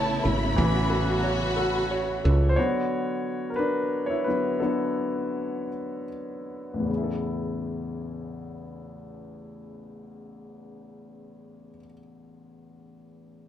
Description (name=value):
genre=six-eight pop ballad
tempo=49-60 BPM (dotted quarters)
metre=6/8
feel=straight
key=A major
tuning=A4 = 440 Hz
part: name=warm symphonic violin section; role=second line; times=0.0-2.2 s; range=A5 to B5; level=-32 LUFS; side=left 1 dB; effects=none
part: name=clear concert grand piano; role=accompaniment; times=0.0-13.5 s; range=A1 to C#5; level=-28 LUFS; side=left 1 dB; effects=none
part: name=warm studio string section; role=sustained chords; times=0.0-2.6 s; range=C#3 to F#4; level=-28 LUFS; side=equal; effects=none
part: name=woody fretless electric bass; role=bass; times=0.0-2.6 s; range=G#1 to C#2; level=-25 LUFS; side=right 1 dB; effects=none
room=wet studio reverb, RT60 0.6 s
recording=band playing live in one room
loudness=-24 LUFS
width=side -10 dB against mid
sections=0.0-2.6 A section; 2.6-6.9 B section; 6.9-11.7 C section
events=slowing down 2.6-6.9; grand piano solo 2.6-6.9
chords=0.0 Aadd9; 2.6 D6; 6.9 Aadd9